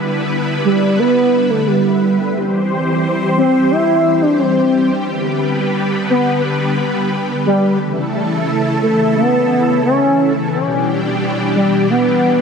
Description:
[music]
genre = synthwave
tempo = 88 BPM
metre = 4/4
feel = straight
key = E minor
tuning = A4 = 440 Hz
[part]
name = analog string pad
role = sustained chords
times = 0.0-12.4 s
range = B2 to C5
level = -17 LUFS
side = equal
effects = ensemble chorus
[part]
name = expressive portamento lead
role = melody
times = 0.6-12.4 s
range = G3 to E4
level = -15 LUFS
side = equal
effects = analog chorus, ping-pong delay
[sound]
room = moderate plate reverb, RT60 2.9 s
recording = dense, heavily limited modern master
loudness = -13 LUFS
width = side -6 dB against mid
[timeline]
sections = 0.0-12.4 A section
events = none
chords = 0.0 Em7; 2.3 C; 5.1 G; 7.8 A/C#; 10.5 Em7

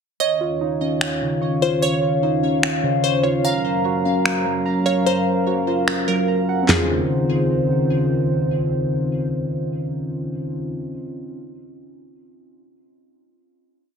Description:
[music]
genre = hip hop, atmospheric cloud-rap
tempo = 148 BPM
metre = 4/4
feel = half-time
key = Db major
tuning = A4 = 440 Hz
[part]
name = glassy wavetable pluck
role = melody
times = 0.2-7.9 s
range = Ab4 to F5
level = -24 LUFS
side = right 1 dB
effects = chorus, tape echo
[part]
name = dark analog pad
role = sustained chords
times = 0.2-10.7 s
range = Db3 to F5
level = -22 LUFS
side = left 1 dB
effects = lush chorus
[part]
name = muted felt-like synth keys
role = arpeggios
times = 0.2-11.4 s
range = Db3 to Bb5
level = -24 LUFS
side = right 2 dB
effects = chorus, tape echo
[part]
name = smooth R&B drum kit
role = drums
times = 1.0-6.8 s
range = finger snaps, handclaps, snare drum, toms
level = -21 LUFS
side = equal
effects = vintage 12-bit sampler grit
[sound]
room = light reverb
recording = none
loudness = -18 LUFS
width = side -6 dB against mid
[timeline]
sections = 0.2-6.7 breakdown; 6.7-9.9 final chord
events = kick muted 5.1-6.7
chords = 0.2 Dbadd9; 3.4 Gbmaj7; 6.7 Dbmaj9

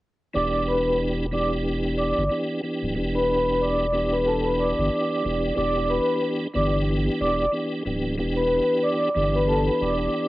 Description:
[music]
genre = hip hop, boom-bap hip-hop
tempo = 92 BPM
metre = 4/4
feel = swing 57% on 16ths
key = E minor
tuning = A4 = 440 Hz
[part]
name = vibraphone with soft mallets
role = melody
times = 0.3-10.3 s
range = A4 to D6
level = -23 LUFS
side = equal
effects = high-pass filter, low-pass filter, cassette tape, tape echo
[part]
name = tonewheel organ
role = accompaniment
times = 0.3-10.3 s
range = E3 to G4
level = -26 LUFS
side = equal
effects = chorus vibrato, fast rotary speaker, high-pass filter, low-pass filter, cassette tape
[part]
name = saturated sub bass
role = bass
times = 0.4-10.1 s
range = D1 to G1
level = -28 LUFS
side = equal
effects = none
[sound]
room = light reverb, small room ambience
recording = home recording on cassette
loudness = -21 LUFS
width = side -18 dB against mid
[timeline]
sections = 0.4-5.6 A section; 5.6-10.3 B section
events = none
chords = 0.4 Em7

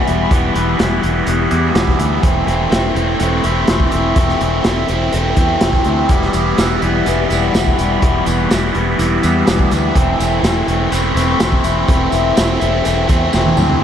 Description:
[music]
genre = psychedelic rock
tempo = 124 BPM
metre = 4/4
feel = straight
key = unclear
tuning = A4 = 440 Hz
[part]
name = raw garage guitar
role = riff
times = 0.0-13.8 s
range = E3 to E4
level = -15 LUFS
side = equal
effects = overdrive, phaser
[part]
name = fingered electric bass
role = bass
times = 0.1-13.8 s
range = E1 to E2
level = -19 LUFS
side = equal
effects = none
[part]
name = crunchy breakbeat drum kit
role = drums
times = 0.1-13.8 s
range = hi-hat, kick drum, snare drum, toms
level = -18 LUFS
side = equal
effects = none
[part]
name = tambourine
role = percussion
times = 6.3-13.7 s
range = none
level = -33 LUFS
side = right 8 dB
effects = none
[sound]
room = moderate lush hall reverb, RT60 2.1 s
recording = dreamy mix soaked in reverb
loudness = -12 LUFS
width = side -9 dB against mid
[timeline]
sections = 0.0-13.8 A section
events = drum fill 13.3-13.8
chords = 0.0 Em; 2.2 Am/E; 6.1 Em; 10.0 Am/E

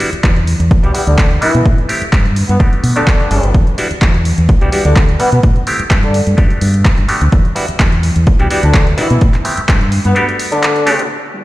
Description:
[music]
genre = filtered disco house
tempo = 127 BPM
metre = 4/4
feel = swing 54% on 16ths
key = E minor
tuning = A4 = 440 Hz
[part]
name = bright clav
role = accompaniment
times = 0.0-11.4 s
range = G3 to A4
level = -19 LUFS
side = equal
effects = phaser, sidechain pumping, low-pass filter
[part]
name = punchy analog drum machine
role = drums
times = 0.0-11.1 s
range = handclaps, hi-hat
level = -21 LUFS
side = equal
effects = overdrive, sidechain pumping on hats, low-pass filter on hats, sidechain pumping on cymbals, low-pass filter on cymbals, low-pass filter on snare
[part]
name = deep dub fingered electric bass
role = bass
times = 0.1-10.1 s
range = G1 to B2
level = -14 LUFS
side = equal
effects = sidechain pumping, low-pass filter
[part]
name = electronic kick drum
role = drums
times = 0.2-9.8 s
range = none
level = -11 LUFS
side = equal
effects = overdrive
[part]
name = mellow horn section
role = melody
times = 0.8-11.1 s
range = D3 to G4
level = -18 LUFS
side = left 1 dB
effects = vintage 12-bit sampler grit, sidechain pumping, low-pass filter
[sound]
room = light reverb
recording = played on a big sound system in a bare room, stone room reverb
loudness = -10 LUFS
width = side -17 dB against mid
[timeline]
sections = 0.0-11.1 A section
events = none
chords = 0.0 Em9; 1.7 Am9; 2.4 Gmaj9; 3.5 Em9; 5.4 Am9; 6.1 Gmaj9; 7.3 Em9; 9.2 Am9; 9.9 Gmaj9

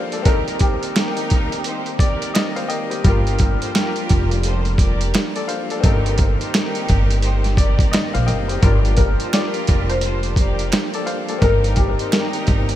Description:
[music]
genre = hip hop, boom-bap hip-hop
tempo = 86 BPM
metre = 4/4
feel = swing 62% on 16ths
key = unclear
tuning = A4 = 440 Hz
[part]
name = warm upright piano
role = melody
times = 0.0-1.1, 9.0-12.3 s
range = G4 to D5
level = -26 LUFS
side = left 2 dB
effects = lush chorus, high-pass filter, low-pass filter, ping-pong delay
[part]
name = bright upright piano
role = accompaniment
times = 0.0-12.8 s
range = G3 to G5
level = -27 LUFS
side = left 5 dB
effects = high-pass filter, low-pass filter
[part]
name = percussive tonewheel organ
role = sustained chords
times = 0.0-12.8 s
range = Eb3 to G4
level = -30 LUFS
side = right 2 dB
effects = chorus vibrato, slow rotary speaker, high-pass filter, low-pass filter
[part]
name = trip hop sampler-style drum kit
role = drums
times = 0.1-12.8 s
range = hi-hat, kick drum, snare drum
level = -19 LUFS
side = equal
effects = none
[part]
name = bright studio string section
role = stabs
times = 0.2-12.8 s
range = Eb4 to D5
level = -28 LUFS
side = equal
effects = high-pass filter, low-pass filter, ping-pong delay
[part]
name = finger snap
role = percussion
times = 1.0-12.3 s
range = none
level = -35 LUFS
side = right 8 dB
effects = none
[part]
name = upright bass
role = bass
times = 3.0-12.8 s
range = F1 to Bb1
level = -19 LUFS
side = equal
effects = none
[sound]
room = light reverb, studio reverb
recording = none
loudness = -16 LUFS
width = side -12 dB against mid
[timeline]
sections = 0.0-12.8 A section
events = break 0.0-3.0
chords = 0.3 Cm7; 3.0 Gm7; 5.8 Cm7/G; 8.6 Gm7; 11.4 Cm7/G

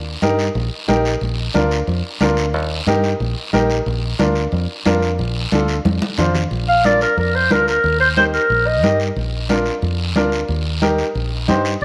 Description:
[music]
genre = latin, cumbia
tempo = 181 BPM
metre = 4/4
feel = straight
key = Bb major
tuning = A4 = 440 Hz
[part]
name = fingered electric bass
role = bass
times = 0.0-11.8 s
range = Bb1 to G2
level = -23 LUFS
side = equal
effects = none
[part]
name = clear upright piano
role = accompaniment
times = 0.2-11.7 s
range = D4 to C5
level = -23 LUFS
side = equal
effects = none
[part]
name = congas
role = percussion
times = 0.2-11.8 s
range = none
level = -25 LUFS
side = equal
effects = none
[part]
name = guiro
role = percussion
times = 0.2-11.8 s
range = none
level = -31 LUFS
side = equal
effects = none
[part]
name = warm clarinet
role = melody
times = 6.7-9.0, 11.8 s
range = Bb4 to F5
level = -18 LUFS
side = equal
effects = none
[sound]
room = moderate echo chamber reverb, RT60 2.0 s, studio reverb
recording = none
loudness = -18 LUFS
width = mono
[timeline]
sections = 0.0-6.5 A section; 6.5-11.8 B section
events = drum fill 5.8-6.5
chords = 0.0 Eb; 1.2 Bb; 2.5 Eb; 3.9 Bb; 7.8 Eb; 9.2 Bb; 10.5 Eb

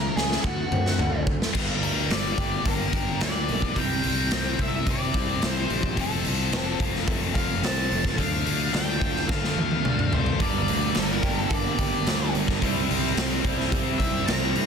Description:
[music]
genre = quiet-loud alternative rock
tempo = 108 BPM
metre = 4/4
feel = straight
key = G dorian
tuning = A4 = 441 Hz
[part]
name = octave-fuzz lead guitar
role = melody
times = 0.0-14.7 s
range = F#4 to Bb5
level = -31 LUFS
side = left 1 dB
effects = distortion
[part]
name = electric guitar through a small old amp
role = arpeggios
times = 0.0-14.7 s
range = F2 to G4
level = -34 LUFS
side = equal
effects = analog chorus
[part]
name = fuzz fingered electric bass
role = bass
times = 0.0-14.7 s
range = F1 to D3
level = -30 LUFS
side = equal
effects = overdrive
[part]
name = raw garage drum kit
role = drums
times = 0.2-14.7 s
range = crash cymbal, hi-hat, kick drum, snare drum, toms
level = -26 LUFS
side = equal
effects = none
[part]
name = heavy high-gain guitar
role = riff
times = 1.5-14.7 s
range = F2 to D4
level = -30 LUFS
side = left 16 dB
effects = distortion
[part]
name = fuzz guitar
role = riff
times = 10.4-14.7 s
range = G2 to E4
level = -30 LUFS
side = right 16 dB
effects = distortion
[sound]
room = little or no reverb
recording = dense, heavily limited modern master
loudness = -22 LUFS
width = side -6 dB against mid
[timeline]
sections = 0.0-1.6 A section; 1.6-14.7 B section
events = drum fill 0.0-1.6, 9.3-10.4; lead electric guitar solo 1.6-14.7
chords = 0.4 D7; 1.6 Gm; 3.8 C; 6.0 F; 8.2 Dm; 10.4 Gm; 12.6 C

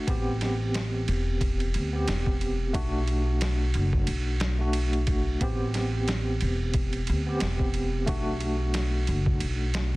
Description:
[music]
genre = trip hop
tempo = 90 BPM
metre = 4/4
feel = swing 57% on 16ths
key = A dorian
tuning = A4 = 442 Hz
[part]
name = tine electric piano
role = accompaniment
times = 0.0-10.0 s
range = A3 to G4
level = -31 LUFS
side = right 1 dB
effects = medium tremolo, vintage 12-bit sampler grit, tape echo
[part]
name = upright bass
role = bass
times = 0.1-9.9 s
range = E1 to D2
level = -27 LUFS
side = equal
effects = none
[part]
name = boom bap sampler-style drum kit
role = drums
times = 0.1-9.9 s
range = kick drum, ride cymbal, snare drum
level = -30 LUFS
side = equal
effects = none
[sound]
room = little or no reverb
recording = dense, heavily limited modern master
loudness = -24 LUFS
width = side -21 dB against mid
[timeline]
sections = 0.0-10.0 A section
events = none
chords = 0.1 Am7; 2.7 Bm7; 5.4 Am7; 8.1 Bm7

